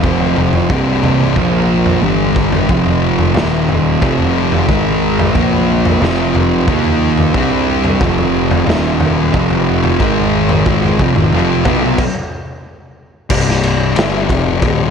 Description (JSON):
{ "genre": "stoner and doom metal", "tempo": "90 BPM", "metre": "4/4", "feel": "straight", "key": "unclear", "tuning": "A4 = 440 Hz", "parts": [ { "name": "mellow tonewheel organ", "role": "sustained chords", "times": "0.0-14.9 s", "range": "C3 to G5", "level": "-24 LUFS", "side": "right 2 dB", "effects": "slow rotary speaker" }, { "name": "thick fuzz guitar", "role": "riff", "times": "0.0-14.9 s", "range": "C2 to Eb4", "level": "-16 LUFS", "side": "left 12 dB", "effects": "distortion" }, { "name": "thick fuzz guitar", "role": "riff", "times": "0.0-12.0 s", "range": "C2 to Eb4", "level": "-17 LUFS", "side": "right 14 dB", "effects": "distortion" }, { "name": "fuzz picked electric bass", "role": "bass", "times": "0.0-14.9 s", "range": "C1 to Eb2", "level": "-20 LUFS", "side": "equal", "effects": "overdrive" }, { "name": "raw garage drum kit", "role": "drums", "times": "0.0-14.8 s", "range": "crash cymbal, kick drum, ride cymbal, snare drum, toms", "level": "-17 LUFS", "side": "equal", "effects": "none" } ], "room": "studio reverb", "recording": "none", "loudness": "-11 LUFS", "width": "side -6 dB against mid", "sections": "0.0-13.3 A section; 13.3-14.9 B section", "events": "drum fill 2.0-2.7; stop 12.0-13.3", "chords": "0.0 F5; 0.7 C5; 1.4 Bb5; 2.0 G5; 2.7 F5; 3.4 Eb5; 4.0 F5; 4.7 Ab5; 5.3 Bb5; 6.0 F5; 6.7 Eb5; 7.3 C5; 8.0 F5; 8.7 Eb5; 9.3 F5; 10.0 Ab5; 10.7 F5; 13.3 Cm" }